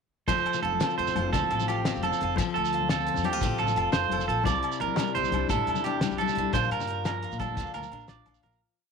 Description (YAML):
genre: highlife guitar band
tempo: 115 BPM (dotted quarters)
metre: 12/8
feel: straight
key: F major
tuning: A4 = 440 Hz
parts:
  - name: picked steel-string acoustic guitar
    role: accompaniment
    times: 0.3-8.9 s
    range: Bb2 to A4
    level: -32 LUFS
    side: left 13 dB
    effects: none
  - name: electric guitar at the edge of break-up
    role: arpeggios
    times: 0.3-8.6 s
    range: G4 to D5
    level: -28 LUFS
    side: right 9 dB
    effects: slapback echo
  - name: upright bass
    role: bass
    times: 0.3-8.6 s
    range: F1 to Bb2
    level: -34 LUFS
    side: left 1 dB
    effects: none
  - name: cloth-damped thuddy drum kit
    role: drums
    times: 0.3-8.5 s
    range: hi-hat, kick drum, snare drum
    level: -32 LUFS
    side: left 1 dB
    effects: none
  - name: agogo bells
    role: percussion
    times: 0.3-8.4 s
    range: none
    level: -39 LUFS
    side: left 12 dB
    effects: none
  - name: congas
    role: percussion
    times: 0.3-8.6 s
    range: none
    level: -36 LUFS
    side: left 12 dB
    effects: none
  - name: shekere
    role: percussion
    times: 0.3-8.6 s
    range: none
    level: -38 LUFS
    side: right 8 dB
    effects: none
room: light reverb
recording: 1960s-style stereo with parts hard left and right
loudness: -25 LUFS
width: side -5 dB against mid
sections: 0.3-8.6 groove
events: fade-out 6.5-8.6; drum fill 8.1-8.6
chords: 0.3 F; 4.5 Cadd9; 6.5 Bb